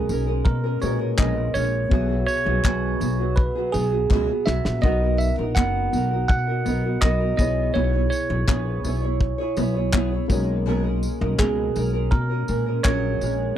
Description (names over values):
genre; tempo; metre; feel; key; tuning
acoustic pop; 82 BPM; 4/4; straight; unclear; A4 = 440 Hz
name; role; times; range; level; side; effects
bell-like tine electric piano; melody; 0.0-13.6 s; G#4 to F#5; -26 LUFS; right 4 dB; phaser, slapback echo
felt-muted upright piano; accompaniment; 0.0-13.6 s; A#3 to F#5; -34 LUFS; left 8 dB; none
nylon-string guitar; accompaniment; 0.0-13.6 s; B2 to C#5; -27 LUFS; right 1 dB; double-tracked left and right
upright bass; bass; 0.0-13.5 s; F#1 to B2; -24 LUFS; equal; none
cloth-damped thuddy drum kit; drums; 0.1-13.4 s; handclaps, kick drum, snare drum, tambourine; -21 LUFS; equal; none
group handclap; percussion; 1.2-13.0 s; none; -36 LUFS; left 7 dB; none
room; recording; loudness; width
little or no reverb; dry, close 1970s-style studio recording; -20 LUFS; side -10 dB against mid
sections
0.0-13.6 A section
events
drum fill 4.1-4.8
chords
0.0 F#add9; 1.9 Eadd9/B; 4.8 Bmaj7; 7.4 C#m7; 10.3 F#add9/B